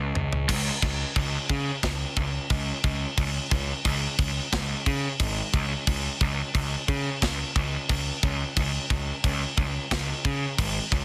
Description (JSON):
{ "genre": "heavy metal", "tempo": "89 BPM", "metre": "4/4", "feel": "straight", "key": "unclear", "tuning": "A4 = 442 Hz", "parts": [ { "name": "fuzz picked electric bass", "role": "bass", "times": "0.0-11.0 s", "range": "G#1 to C#3", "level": "-31 LUFS", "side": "equal", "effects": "overdrive" }, { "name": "tight metal drum kit", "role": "drums", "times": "0.2-11.0 s", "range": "crash cymbal, kick drum, snare drum, toms", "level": "-29 LUFS", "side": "equal", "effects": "soft clipping on kick" } ], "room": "little or no reverb", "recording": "dense, heavily limited modern master", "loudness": "-27 LUFS", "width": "mono", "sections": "0.5-11.0 A section", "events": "drum fill 0.0-0.5; half time 0.5-11.0", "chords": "none" }